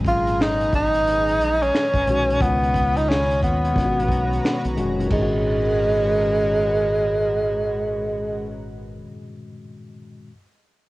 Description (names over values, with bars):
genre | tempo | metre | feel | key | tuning
R&B, neo-soul | 89 BPM | 4/4 | swing 63% on 16ths | G# dorian | A4 = 440 Hz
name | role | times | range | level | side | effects
tine electric piano | accompaniment | 0.0-10.3 s | A#2 to F#4 | -28 LUFS | left 2 dB | none
chorused pulse-width pad | sustained chords | 0.0-8.6 s | C#4 to B5 | -34 LUFS | equal | none
deep dub fingered electric bass | bass | 0.0-9.0 s | E#1 to D#2 | -26 LUFS | equal | none
crunchy breakbeat drum kit | drums | 0.0-5.3 s | crash cymbal, finger snaps, hi-hat, kick drum, snare drum | -26 LUFS | equal | none
breathy tenor saxophone | melody | 0.1-8.6 s | G#3 to E#4 | -20 LUFS | equal | cassette tape
room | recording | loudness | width
light reverb, small room ambience | home recording on cassette | -18 LUFS | side -19 dB against mid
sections
0.0-5.1 A section; 5.1-7.8 B section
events
none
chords
0.0 G#m9; 2.4 C#9; 3.8 G#m11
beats
0.38 1.06 1.73 | 2.40 3.08 3.75 4.43 | 5.10 5.78 6.45 7.12